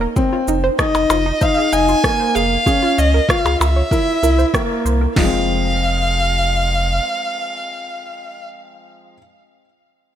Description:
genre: piano and strings electronica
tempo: 96 BPM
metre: 4/4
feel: straight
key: F minor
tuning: A4 = 440 Hz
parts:
  - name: analog pluck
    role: arpeggios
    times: 0.0-5.5 s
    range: Eb4 to G5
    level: -25 LUFS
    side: right 4 dB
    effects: chorus, sidechain pumping, ping-pong delay
  - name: clear upright piano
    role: riff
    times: 0.0-9.2 s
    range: F3 to F4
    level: -20 LUFS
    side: left 2 dB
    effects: ping-pong delay
  - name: warm sub bass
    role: bass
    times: 0.0-7.0 s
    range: F1 to Db2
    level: -19 LUFS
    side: equal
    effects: sidechain pumping
  - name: deep house drum kit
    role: drums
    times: 0.2-5.3 s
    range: crash cymbal, kick drum, snare drum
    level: -19 LUFS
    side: equal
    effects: studio reverb
  - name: electronic shaker, rim click and percussion blips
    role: drums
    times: 0.2-5.0 s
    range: none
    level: -22 LUFS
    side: equal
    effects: studio reverb
  - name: dark violin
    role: melody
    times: 0.8-8.4 s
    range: Eb5 to Ab5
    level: -20 LUFS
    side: equal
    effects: none
room: light reverb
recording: none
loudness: -14 LUFS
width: side -10 dB against mid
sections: 0.0-5.2 A section; 5.2-7.7 B section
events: drop 0.0-5.2; band accent 4.5-4.9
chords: 0.2 Fm7; 2.7 Db; 3.9 C7; 5.2 Fm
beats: | 0.16 0.79 1.41 2.04 | 2.66 3.29 3.91 4.54 | 5.16 5.79 6.41 7.04

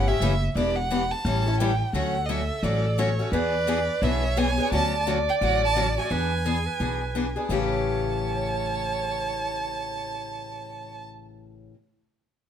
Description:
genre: acoustic string swing (jazz manouche)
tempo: 173 BPM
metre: 4/4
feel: swing 60% on 8ths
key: A mixolydian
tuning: A4 = 440 Hz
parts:
  - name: warm violin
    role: melody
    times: 0.0-11.0 s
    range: C#5 to A5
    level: -29 LUFS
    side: right 2 dB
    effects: plate reverb
  - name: picked steel-string acoustic guitar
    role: accompaniment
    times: 0.0-11.8 s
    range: A2 to A4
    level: -28 LUFS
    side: left 4 dB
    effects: none
  - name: upright bass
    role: bass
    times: 0.0-11.7 s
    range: E1 to E2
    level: -28 LUFS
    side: equal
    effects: none
  - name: bright clarinet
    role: second line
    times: 1.9-11.0 s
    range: G#4 to D5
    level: -30 LUFS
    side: right 3 dB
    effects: none
room: light reverb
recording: none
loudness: -23 LUFS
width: side -9 dB against mid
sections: 0.0-1.9 A section; 1.9-7.5 B section; 7.5-10.3 C section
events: none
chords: 0.0 A7; 0.6 Em7; 1.2 A7; 1.9 Dmaj7; 3.3 E7; 4.7 Dmaj7; 6.1 E7; 7.5 A7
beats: 0.21 | 0.55 0.90 1.25 1.59 | 1.94 2.29 2.63 2.98 | 3.33 3.68 4.02 4.37 | 4.72 5.06 5.41 5.76 | 6.11 6.45 6.80 7.15 | 7.49 7.84 8.19 8.54 | 8.88 9.23 9.58 9.92

